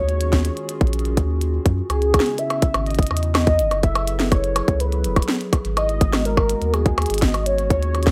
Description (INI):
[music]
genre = IDM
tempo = 124 BPM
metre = 4/4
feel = straight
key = unclear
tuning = A4 = 438 Hz
[part]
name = warm velvety synth lead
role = melody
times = 0.0-8.1 s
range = G#4 to E5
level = -26 LUFS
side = equal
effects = chorus, dub echo
[part]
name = warbly tape-like pad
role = sustained chords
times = 0.0-8.1 s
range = C#3 to B4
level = -32 LUFS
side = equal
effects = chorus, built-in reverb, sidechain pumping
[part]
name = warm sub bass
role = bass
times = 0.0-8.1 s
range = E1 to F#2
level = -24 LUFS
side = equal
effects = none
[part]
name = glitchy drum kit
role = drums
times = 0.1-8.1 s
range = hi-hat, percussion blips, snare drum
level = -26 LUFS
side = equal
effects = none
[part]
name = electronic kick drum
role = drums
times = 0.3-8.1 s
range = none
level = -20 LUFS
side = equal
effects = none
[sound]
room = moderate studio reverb, RT60 0.6 s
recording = rough home demo mix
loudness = -20 LUFS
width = mono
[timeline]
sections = 0.0-8.1 A section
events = none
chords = 0.0 D#m11; 1.9 C#m11; 3.6 F#m11; 5.8 G#m9